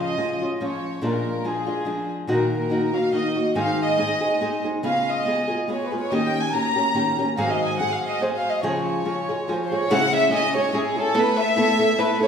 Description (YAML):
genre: mexican folk, mariachi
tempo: 142 BPM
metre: 3/4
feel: swing 55% on 8ths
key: Db major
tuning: A4 = 440 Hz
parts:
  - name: warm symphonic violin section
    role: melody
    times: 0.0-12.3 s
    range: Ab4 to Bb5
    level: -23 LUFS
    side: equal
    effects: none
  - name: nylon-string guitar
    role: accompaniment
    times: 0.0-12.3 s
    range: Ab2 to A4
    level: -23 LUFS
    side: equal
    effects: none
room: wet recital hall reverb, RT60 1.5 s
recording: recorded in a church or concert hall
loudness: -20 LUFS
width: side -7 dB against mid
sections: 0.0-9.9 A section; 9.9-12.3 B section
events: none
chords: 0.0 Db; 1.0 Bb7; 2.3 Ebm/Bb; 3.6 Ab; 4.8 Db7; 6.1 Eb7; 7.4 Ab7; 8.6 Db; 9.9 C#m; 11.2 Asus2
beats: 0.18 0.60 | 1.03 1.45 1.87 | 2.29 2.71 3.13 | 3.56 3.98 4.41 | 4.84 5.26 5.69 | 6.11 6.53 6.95 | 7.38 7.79 8.22 | 8.64 9.06 9.49 | 9.91 10.33 10.75 | 11.16 11.58 11.99